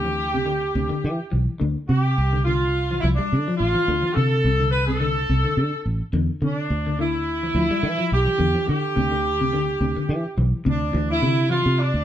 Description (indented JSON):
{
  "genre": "afrobeat",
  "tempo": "106 BPM",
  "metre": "4/4",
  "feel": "swing 53% on 16ths",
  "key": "D dorian",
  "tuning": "A4 = 443 Hz",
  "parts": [
    { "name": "clear horn section", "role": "melody", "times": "0.0-12.0 s", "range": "D4 to B4", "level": "-23 LUFS", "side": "right 1 dB", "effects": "none" },
    { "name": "semi-hollow electric guitar", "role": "arpeggios", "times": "0.0-11.6 s", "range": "C3 to G3", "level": "-27 LUFS", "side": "left 4 dB", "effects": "none" },
    { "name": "fingered electric bass", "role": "bass", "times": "0.0-12.0 s", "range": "A1 to E3", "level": "-22 LUFS", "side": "right 1 dB", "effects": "none" }
  ],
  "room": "moderate stone room reverb, RT60 1.0 s",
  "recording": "band playing live in one room",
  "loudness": "-19 LUFS",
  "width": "side -11 dB against mid",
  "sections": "0.0-10.7 A section; 10.7-12.0 B section",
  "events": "none",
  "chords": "0.0 Em7; 1.6 Dm7; 6.2 Em7; 10.7 D7(no3)"
}